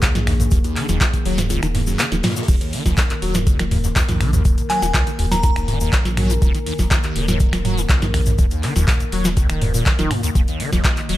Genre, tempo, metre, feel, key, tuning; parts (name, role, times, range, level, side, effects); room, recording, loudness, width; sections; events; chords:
acid house; 122 BPM; 4/4; straight; Eb minor; A4 = 439 Hz
dark analog pad; sustained chords; 0.0-11.2 s; Eb3 to Eb5; -28 LUFS; left 1 dB; chorus, sidechain pumping
liquid acid bass; riff; 0.0-11.2 s; Eb1 to Gb3; -23 LUFS; equal; phaser, overdrive, ensemble chorus, vintage 12-bit sampler grit, sidechain pumping, ping-pong delay
booming analog drum machine; drums; 0.0-11.2 s; crash cymbal, finger snaps, handclaps, hi-hat, snare drum, toms; -22 LUFS; equal
electronic kick drum; drums; 0.0-10.9 s; -18 LUFS; equal
warm soul drum kit; drums; 0.0-11.2 s; hi-hat, snare drum; -37 LUFS; left 2 dB
tube shaker; percussion; 0.0-11.1 s; -33 LUFS; left 5 dB
round analog bass; bass; 0.2-11.2 s; Eb1 to Bb1; -23 LUFS; equal; sidechain pumping
glassy synth bell; melody; 4.7-5.5 s; Ab5 to Bb5; -25 LUFS; equal; chorus, dub echo
small room ambience; -16 LUFS; side -15 dB against mid
0.0-11.2 A section
kick drops out 1.5-2.5; drum fill 2.2
0.0 Eb5